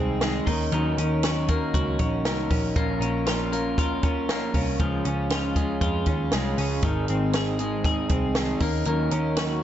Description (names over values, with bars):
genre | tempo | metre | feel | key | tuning
jangly indie pop | 118 BPM | 4/4 | straight | Eb dorian | A4 = 440 Hz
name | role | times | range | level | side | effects
electric guitar through a small old amp | accompaniment | 0.0-9.6 s | Ab2 to Bb4 | -28 LUFS | right 4 dB | spring reverb
twelve-string electric guitar | arpeggios | 0.0-9.6 s | Eb3 to Ab4 | -29 LUFS | left 6 dB | ping-pong delay
vintage muted picked electric bass | bass | 0.0-9.6 s | Ab1 to F2 | -28 LUFS | equal | none
compact cocktail drum kit | drums | 0.2-9.5 s | hi-hat, kick drum, snare drum | -27 LUFS | equal | none
room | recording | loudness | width
little or no reverb | nothing above 7.9 kHz | -22 LUFS | side -11 dB against mid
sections
0.0-9.6 A section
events
none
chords
0.5 Ebm7; 2.8 Bbm; 4.8 Db; 6.8 Ab; 8.6 Ebm7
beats
0.22 | 0.73 1.24 1.75 2.25 | 2.76 3.27 3.78 4.29 | 4.80 5.30 5.81 6.32 | 6.83 7.34 7.85 8.36 | 8.86 9.37